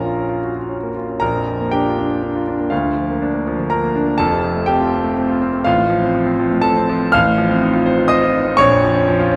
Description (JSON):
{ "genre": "classical, virtuoso piano study", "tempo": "122 BPM", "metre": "3/4", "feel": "rubato", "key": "Bb major", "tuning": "A4 = 439 Hz", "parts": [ { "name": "clear grand piano", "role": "solo", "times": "0.0-9.4 s", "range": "F1 to F6", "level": "-17 LUFS", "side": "equal", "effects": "none" } ], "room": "moderate recital hall reverb, RT60 1.7 s", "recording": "dark, warm production", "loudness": "-17 LUFS", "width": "mono", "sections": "0.0-1.2 A section; 1.2-9.4 B section", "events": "none", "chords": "0.0 Bbm; 1.2 Bb; 2.7 Bb/D; 4.2 F; 5.7 F/A; 7.1 F7/A; 8.6 Bbm" }